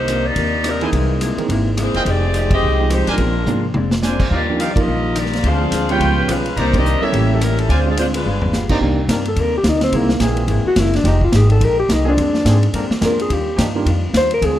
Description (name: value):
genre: jazz, big band swing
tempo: 213 BPM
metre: 4/4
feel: swing 60% on 8ths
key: C minor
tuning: A4 = 440 Hz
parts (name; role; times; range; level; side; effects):
- mellow saxophone section; melody; 0.0-8.7 s; E3 to G5; -21 LUFS; left 1 dB; none
- upright bass; bass; 0.0-14.6 s; E1 to Bb2; -19 LUFS; equal; none
- vintage hollow-body jazz guitar; accompaniment; 0.1-14.6 s; A2 to Ab4; -25 LUFS; left 4 dB; none
- vintage drum kit; drums; 0.1-14.5 s; crash cymbal, hi-hat, kick drum, ride cymbal, rim click, snare drum, toms; -22 LUFS; equal; none
- warm concert grand piano; accompaniment; 0.8-13.8 s; Eb3 to Bb4; -23 LUFS; right 4 dB; none
- clear trumpet section; stabs; 0.8-8.8 s; D4 to Bb5; -26 LUFS; right 2 dB; none
- clear trombone section; sustained chords; 9.1-14.6 s; D3 to Bb4; -29 LUFS; equal; none
- dark alto saxophone; melody; 9.3-14.6 s; Bb3 to C5; -18 LUFS; left 1 dB; none
room: light reverb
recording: none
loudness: -14 LUFS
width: side -12 dB against mid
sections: 0.0-8.8 A section; 8.8-14.6 B section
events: band accent 2.5, 4.7, 6.7; drum fill 3.5-4.0, 8.3; alto saxophone solo 8.8-14.6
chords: 0.0 Cm9; 0.9 C7alt; 2.1 Fm9; 3.2 Bb9; 4.3 Ebmaj9; 5.4 Dm7b5; 6.0 Db7#11; 6.6 Cm9; 7.1 A7b9; 7.7 Dm7b5; 8.3 G7b9; 8.8 Cm9; 9.9 C7alt; 11.1 Fm9; 12.2 Bb9; 13.3 Ebmaj9